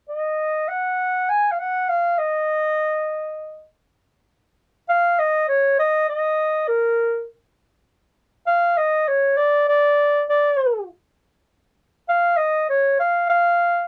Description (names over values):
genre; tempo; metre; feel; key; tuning
folk; 100 BPM; 3/4; straight; Eb minor; A4 = 438 Hz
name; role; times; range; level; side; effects
mellow clarinet; melody; 0.1-13.9 s; Bb4 to Ab5; -20 LUFS; equal; none
room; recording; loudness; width
light reverb; none; -20 LUFS; mono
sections
0.4-4.0 A section; 4.0-13.9 B section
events
none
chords
none